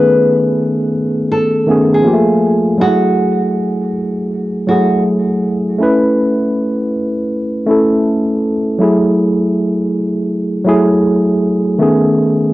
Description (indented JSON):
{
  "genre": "hip hop",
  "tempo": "80 BPM",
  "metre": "4/4",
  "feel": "swing 66% on 16ths",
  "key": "F# dorian",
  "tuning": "A4 = 440 Hz",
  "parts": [
    { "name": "nylon-string guitar", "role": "melody", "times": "0.0-5.0 s", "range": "F#4 to B4", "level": "-16 LUFS", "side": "left 1 dB", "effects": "low-pass filter, cassette tape, analog delay" },
    { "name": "tine electric piano", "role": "accompaniment", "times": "0.0-12.5 s", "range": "D#3 to B4", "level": "-12 LUFS", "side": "equal", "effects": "medium stereo tremolo, low-pass filter, cassette tape" }
  ],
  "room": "moderate booth ambience, RT60 0.2 s",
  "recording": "home recording on cassette",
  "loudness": "-12 LUFS",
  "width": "side -17 dB against mid",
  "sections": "0.0-12.5 A section",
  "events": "none",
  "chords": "0.0 Amaj9#11; 2.0 Fmadd11; 2.8 F#m9; 5.8 B9sus4; 8.8 F#m9; 11.8 Amaj9#11"
}